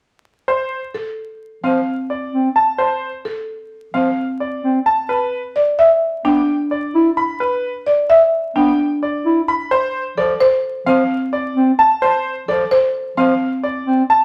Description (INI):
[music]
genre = classical, minimalist pattern music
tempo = 130 BPM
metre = 5/4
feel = straight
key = D dorian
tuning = A4 = 440 Hz
[part]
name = bright concert grand piano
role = melody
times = 0.5-14.2 s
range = B4 to B5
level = -20 LUFS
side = equal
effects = none
[part]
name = buzzing marimba with medium mallets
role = arpeggios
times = 0.9-13.5 s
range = C4 to E5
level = -19 LUFS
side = equal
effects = none
[part]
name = mellow bass clarinet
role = accompaniment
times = 1.6-14.0 s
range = F3 to E4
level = -20 LUFS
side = equal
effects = none
[sound]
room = wet large studio reverb, RT60 0.9 s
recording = vinyl crackle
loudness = -17 LUFS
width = mono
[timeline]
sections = 0.5-14.2 A section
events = none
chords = 0.5 Dm7 (rootless); 5.1 G (rootless); 9.7 F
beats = | 0.48 0.94 1.41 1.87 2.33 | 2.79 3.25 3.71 4.17 4.64 | 5.10 5.56 6.02 6.48 6.95 | 7.41 7.87 8.33 8.79 9.25 | 9.71 10.18 10.64 11.10 11.56 | 12.02 12.48 12.95 13.41 13.87